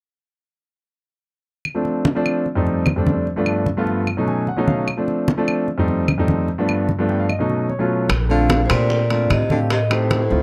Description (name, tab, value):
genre	Afro-Cuban jazz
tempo	149 BPM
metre	4/4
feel	straight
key	Bb major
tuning	A4 = 438 Hz
part	claves	percussion	1.6-10.1 s	none	-29 LUFS	equal	none
part	clear concert grand piano	accompaniment	1.7-10.4 s	F2 to Ab5	-22 LUFS	equal	none
part	congas	percussion	1.7-10.4 s	none	-26 LUFS	equal	none
part	upright bass	bass	8.1-10.4 s	Bb1 to Bb2	-22 LUFS	equal	none
part	bongos	percussion	8.1-10.4 s	none	-33 LUFS	equal	none
part	timbales	percussion	8.1-10.3 s	none	-29 LUFS	equal	none
part	vibraphone with medium hard mallets	melody	8.3-10.4 s	C5 to F5	-25 LUFS	equal	none
part	warm baritone saxophone	second line	8.3-10.4 s	A2 to D3	-26 LUFS	equal	none
room	moderate studio reverb, RT60 0.6 s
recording	dark, warm production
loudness	-19 LUFS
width	mono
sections	1.7-8.1 A section; 8.1-10.4 B section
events	grand piano fill 4.1-4.9, 6.9-8.1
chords	1.7 Dm7; 2.5 F9; 3.3 G9; 4.1 B7; 4.9 Dm7; 5.7 F9; 6.5 G9; 7.3 B7; 8.1 Bbmaj9; 9.7 Am7b5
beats	| 1.66 2.06 2.46 2.86 | 3.27 3.67 4.07 4.47 | 4.88 5.28 5.68 6.08 | 6.49 6.89 7.29 7.69 | 8.10 8.50 8.90 9.30 | 9.70 10.10